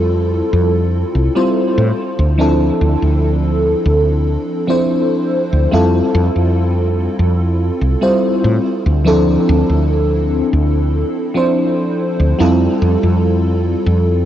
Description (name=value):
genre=vaporwave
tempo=72 BPM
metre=4/4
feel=straight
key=F major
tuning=A4 = 440 Hz
part: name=FM electric piano with soft pad layer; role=accompaniment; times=0.0-14.3 s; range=F3 to C5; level=-15 LUFS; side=equal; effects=phaser, analog chorus, tape echo
part: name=woody fretless electric bass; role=bass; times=0.0-14.3 s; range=C2 to A2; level=-14 LUFS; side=equal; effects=none
room=wet huge ambient reverb, RT60 9.2 s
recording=dreamy mix soaked in reverb, cassette tape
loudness=-12 LUFS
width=side -11 dB against mid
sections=0.0-14.3 A section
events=none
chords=0.0 Fmaj9; 2.0 Dm9; 5.7 Fmaj9; 8.7 Dm9; 12.4 Fmaj9